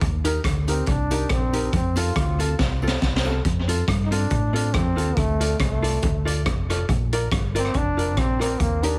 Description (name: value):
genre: ska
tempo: 140 BPM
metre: 4/4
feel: swing 55% on 8ths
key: F mixolydian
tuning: A4 = 439 Hz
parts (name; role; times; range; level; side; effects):
- hollow-body short-scale fingered electric bass; bass; 0.0-9.0 s; F1 to A2; -26 LUFS; equal; none
- raw garage drum kit; drums; 0.0-8.9 s; hi-hat, kick drum, rim click, snare drum; -27 LUFS; equal; tape echo
- archtop guitar, miked and amplified; accompaniment; 0.2-9.0 s; C4 to D5; -31 LUFS; equal; tape echo
- tambourine; percussion; 0.2-3.3 s; none; barely audible; none; none
- brilliant trombone; melody; 0.7-9.0 s; A3 to F4; -30 LUFS; equal; tape echo
room: light reverb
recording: heavily compressed radio sound, multiband compression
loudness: -23 LUFS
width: mono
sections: 0.0-3.4 A section; 3.4-9.0 A section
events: drum fill 2.6-3.4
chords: 0.0 Eb; 1.7 F; 5.2 Dm; 6.9 Bb